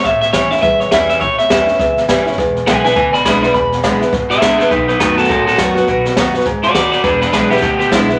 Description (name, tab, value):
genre	rockabilly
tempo	206 BPM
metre	4/4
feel	swing 60% on 8ths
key	E mixolydian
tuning	A4 = 440 Hz
part	electric guitar through a small old amp	melody	0.0-8.2 s	B3 to B5	-16 LUFS	equal	none
part	picked steel-string acoustic guitar	accompaniment	0.0-8.2 s	E2 to F#4	-18 LUFS	equal	none
part	upright bass	bass	0.0-8.1 s	E1 to A2	-28 LUFS	equal	none
part	jazz brush drum kit	drums	0.0-8.1 s	hi-hat, kick drum, snare drum	-21 LUFS	equal	none
room	moderate large studio reverb, RT60 0.8 s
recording	none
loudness	-13 LUFS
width	mono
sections	0.0-8.2 A section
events	clean electric guitar solo 0.0-8.2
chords	0.0 A7; 2.4 E7; 4.7 B7; 7.0 E7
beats	| 0.05 0.34 0.63 0.92 | 1.21 1.50 1.79 2.09 | 2.38 2.67 2.96 3.25 | 3.54 3.84 4.13 4.42 | 4.71 5.00 5.29 5.58 | 5.88 6.17 6.46 6.75 | 7.04 7.33 7.63 7.92